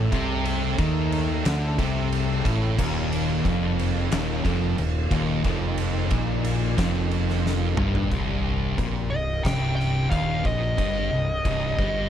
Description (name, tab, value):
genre	stoner and doom metal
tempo	90 BPM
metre	4/4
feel	straight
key	C minor from 8.1 s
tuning	A4 = 440 Hz
part	mellow tonewheel organ	sustained chords	0.0-12.1 s	C3 to E5	-37 LUFS	equal	slow rotary speaker
part	distorted electric guitar	riff	0.0-8.1 s	Eb2 to Eb3	-30 LUFS	equal	overdrive
part	thick fuzz guitar	riff	0.0-12.1 s	C2 to Eb3	-28 LUFS	left 7 dB	distortion
part	thick fuzz guitar	riff	0.0-12.1 s	C2 to Eb3	-29 LUFS	right 8 dB	distortion
part	growling fingered electric bass	bass	0.0-12.1 s	C1 to Eb2	-28 LUFS	equal	overdrive
part	oversized low-tuned drum kit	drums	0.1-11.9 s	crash cymbal, kick drum, ride cymbal, snare drum, toms	-28 LUFS	equal	none
part	fuzz lead guitar	melody	9.1-12.1 s	Eb5 to G5	-27 LUFS	equal	distortion, slapback echo
room	studio ambience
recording	none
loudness	-22 LUFS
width	side -10 dB against mid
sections	0.0-8.1 A section; 8.1-12.1 B section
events	drum fill 7.4-8.1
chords	0.0 A5; 2.8 Eb5; 8.1 Cm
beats	| 0.12 0.79 1.45 2.12 | 2.78 3.45 4.11 4.78 | 5.45 6.11 6.78 7.44 | 8.11 8.78 9.45 10.11 | 10.78 11.45